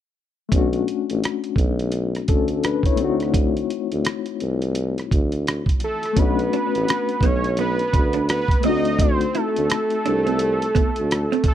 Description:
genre	R&B, neo-soul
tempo	85 BPM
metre	4/4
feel	swing 61% on 16ths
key	B minor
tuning	A4 = 436 Hz
part	reed electric piano	accompaniment	0.5-11.5 s	A3 to C#5	-25 LUFS	left 11 dB	fast tremolo
part	warm tuba	bass	0.5-11.3 s	A1 to D2	-24 LUFS	right 1 dB	none
part	dusty soul sampler-style drum kit	drums	0.5-11.5 s	hi-hat, kick drum, rim click	-21 LUFS	right 1 dB	none
part	fat analog lead	melody	5.8-11.5 s	A4 to Eb5	-23 LUFS	right 2 dB	chorus
part	hollow-body jazz guitar	second line	6.5-11.5 s	B3 to E4	-26 LUFS	right 9 dB	slapback echo
room	little or no reverb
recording	dry, close 1970s-style studio recording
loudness	-18 LUFS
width	side -11 dB against mid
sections	0.5-6.2 A section; 6.2-11.5 B section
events	none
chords	0.5 Bm9; 3.0 D7b9; 6.2 Bm9; 8.6 D7b9

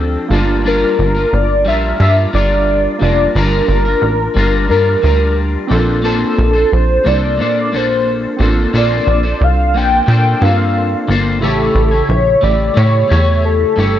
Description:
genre	indie pop, bedroom pop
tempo	89 BPM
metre	4/4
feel	straight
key	unclear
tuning	A4 = 440 Hz
part	warm velvety synth lead	melody	0.0-14.0 s	A4 to G5	-16 LUFS	equal	analog chorus
part	electric guitar at the edge of break-up	accompaniment	0.0-14.0 s	F3 to C#5	-18 LUFS	left 4 dB	ensemble chorus, warbly pitch drift
part	warbly lo-fi synth keys	accompaniment	0.0-14.0 s	C#3 to A5	-23 LUFS	right 5 dB	chorus, plate reverb
part	plucky analog bass	bass	0.0-14.0 s	F1 to Bb2	-14 LUFS	equal	none
room	moderate small room reverb, RT60 0.5 s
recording	nothing above 7.5 kHz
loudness	-11 LUFS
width	side -11 dB against mid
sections	0.0-14.0 A section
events	none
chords	0.3 Gm7; 5.7 Bbmaj9; 11.4 A7

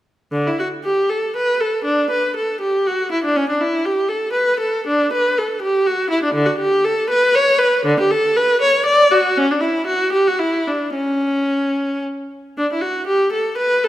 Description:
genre	classical, baroque-style suite movement for unaccompanied viola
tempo	108-124 BPM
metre	3/4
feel	rubato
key	D major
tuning	A4 = 440 Hz
part	rich viola	solo	0.3-13.9 s	D3 to D5	-15 LUFS	equal	none
room	moderate recital hall reverb, RT60 1.8 s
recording	none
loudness	-15 LUFS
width	side -14 dB against mid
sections	0.3-12.6 A section; 12.6-13.9 A section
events	none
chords	none

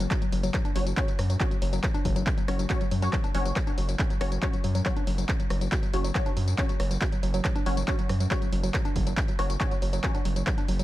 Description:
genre	driving peak-time techno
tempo	139 BPM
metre	4/4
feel	straight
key	unclear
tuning	A4 = 440 Hz
part	woody wave-folded pluck	riff	0.0-10.8 s	F#3 to F#4	-33 LUFS	equal	chorus, sidechain pumping, dub echo
part	filtered dub chord stab	stabs	0.0-10.8 s	C#4 to C#5	-35 LUFS	left 2 dB	phaser, ensemble chorus, sidechain pumping, dub echo
part	gritty driven synth bass	bass	0.0-10.8 s	F#1 to F#2	-27 LUFS	equal	sidechain pumping
part	punchy analog drum machine	drums	0.0-10.8 s	handclaps, hi-hat, rim click, tambourine	-34 LUFS	equal	none
part	electronic kick drum	drums	0.1-10.6 s	none	-28 LUFS	equal	none
room	little or no reverb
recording	none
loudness	-24 LUFS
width	side -15 dB against mid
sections	0.0-10.8 A section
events	none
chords	0.0 F#5

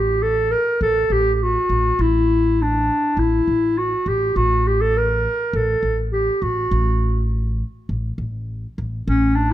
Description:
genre	Turkish makam ensemble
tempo	102 BPM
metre	4/4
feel	straight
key	A makam hicaz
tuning	A4 = 442 Hz
part	warm clarinet	melody	0.0-9.5 s	C#4 to Bb4	-18 LUFS	equal	none
part	upright bass	bass	0.0-9.5 s	A1	-21 LUFS	equal	none
room	light reverb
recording	close, detailed microphones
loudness	-17 LUFS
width	side -13 dB against mid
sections	0.0-9.5 A section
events	none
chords	none

